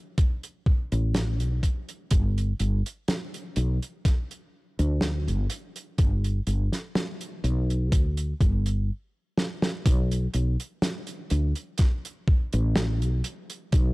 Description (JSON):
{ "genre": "vaporwave", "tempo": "62 BPM", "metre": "4/4", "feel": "swing 53% on 16ths", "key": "B minor", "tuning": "A4 = 441 Hz", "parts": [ { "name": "damped 70s drum kit", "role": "drums", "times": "0.2-13.9 s", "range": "hi-hat, snare drum", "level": "-30 LUFS", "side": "right 1 dB", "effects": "none" }, { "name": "electronic kick drum", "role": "drums", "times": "0.2-13.9 s", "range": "none", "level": "-21 LUFS", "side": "equal", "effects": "none" }, { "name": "woody fretless electric bass", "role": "bass", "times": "0.9-13.9 s", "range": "G1 to D2", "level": "-24 LUFS", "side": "equal", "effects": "wide subtle chorus" } ], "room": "little or no reverb", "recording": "dry, gritty hardware recording", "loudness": "-24 LUFS", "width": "side -23 dB against mid", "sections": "0.0-9.9 A section; 9.9-13.9 B section", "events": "stop 8.9-9.9; drum fill 9.4-9.9", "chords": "none" }